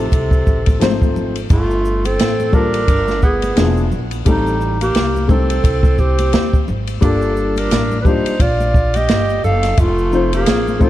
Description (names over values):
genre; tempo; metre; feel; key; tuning
hip hop, jazz-hop; 87 BPM; 4/4; swing 59% on 16ths; G minor; A4 = 440 Hz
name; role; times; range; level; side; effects
breathy clarinet; melody; 0.0-10.9 s; Eb4 to F5; -20 LUFS; equal; none
breathy tenor saxophone; second line; 0.0-10.9 s; C3 to A4; -24 LUFS; right 4 dB; none
dark upright piano; accompaniment; 0.0-10.9 s; F3 to C5; -21 LUFS; left 4 dB; none
upright bass; bass; 0.0-10.9 s; E1 to D2; -20 LUFS; equal; none
open jazz drum kit; drums; 0.1-10.9 s; hi-hat, kick drum, ride cymbal, snare drum; -16 LUFS; equal; none
tube shaker and congas; percussion; 0.1-10.9 s; none; -31 LUFS; left 2 dB; none
room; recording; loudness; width
light reverb, small room ambience; dark, warm production; -13 LUFS; side -14 dB against mid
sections
0.0-1.5 A section; 1.5-10.9 B section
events
none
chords
0.0 F7; 1.5 Gm9; 3.6 E7b9; 4.3 Am7b5; 7.0 Gm9; 9.8 F7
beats
0.12 0.81 | 1.50 2.19 2.88 3.57 | 4.26 4.95 5.64 6.33 | 7.02 7.71 8.40 9.09 | 9.78 10.47